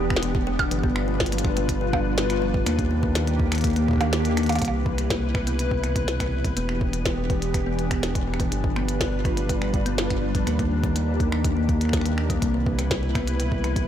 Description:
IDM; 123 BPM; 4/4; straight; C major; A4 = 440 Hz
glassy FM pad; sustained chords; 0.0-13.9 s; Eb3 to B4; -27 LUFS; left 2 dB; ensemble chorus, built-in reverb, sidechain pumping
kalimba; arpeggios; 0.0-13.8 s; B2 to Eb4; -29 LUFS; left 1 dB; low-pass filter, tape echo
round analog bass; bass; 0.0-13.9 s; E1 to Eb2; -26 LUFS; equal; tube saturation
electronic kick drum; drums; 0.1-13.9 s; -27 LUFS; equal; overdrive, small room ambience
glitchy drum kit; drums; 0.1-13.9 s; finger snaps, hi-hat, percussion blips, snare drum; -30 LUFS; right 1 dB; overdrive, small room ambience, digital delay
little or no reverb; blown-out, overdriven recording, overdrive; -21 LUFS; side -10 dB against mid
0.0-4.6 A section; 4.6-13.9 B section
kick drops out 4.1-4.6; drum fill 4.4
0.0 Em7; 0.7 G7; 2.7 Ebmaj7; 4.6 Cmaj7; 6.6 Em7; 8.5 G7; 10.5 Ebmaj7; 12.4 Cmaj7

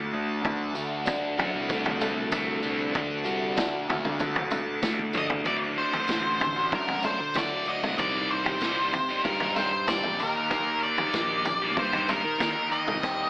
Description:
psychedelic rock; 95 BPM; 4/4; straight; D phrygian dominant; A4 = 440 Hz
tonewheel organ; sustained chords; 0.0-13.3 s; Eb4 to A5; -40 LUFS; equal
crunchy overdriven guitar; riff; 0.0-13.3 s; C3 to G4; -29 LUFS; equal; phaser
fuzz fingered electric bass; bass; 0.1-13.3 s; A1 to Eb3; -34 LUFS; equal; overdrive
vintage drum kit; drums; 0.4-13.2 s; kick drum, snare drum, toms; -31 LUFS; equal
tambourine; percussion; 0.4-13.2 s; -44 LUFS; right 1 dB
octave-fuzz lead guitar; melody; 5.2-13.3 s; Bb4 to Eb5; -27 LUFS; equal; distortion, digital delay
moderate echo chamber reverb, RT60 2.0 s; AM radio sound; -24 LUFS; side -22 dB against mid
0.0-5.5 A section; 5.5-13.3 B section
drum fill 4.8-5.5
0.0 D; 8.0 Cm

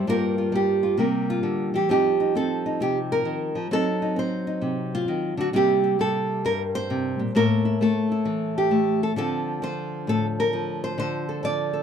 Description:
solo jazz; 132 BPM; 4/4; swing 66% on 8ths; C mixolydian; A4 = 440 Hz
nylon-string guitar; solo; 0.0-11.8 s; G2 to D5; -21 LUFS; equal
moderate small room reverb, RT60 0.6 s; dark, warm production; -21 LUFS; side -8 dB against mid
0.0-11.8 A section
0.1 Gm7; 1.0 C7; 1.9 F7; 3.7 F#dim7; 5.5 C7; 7.3 A5; 9.2 Dm7

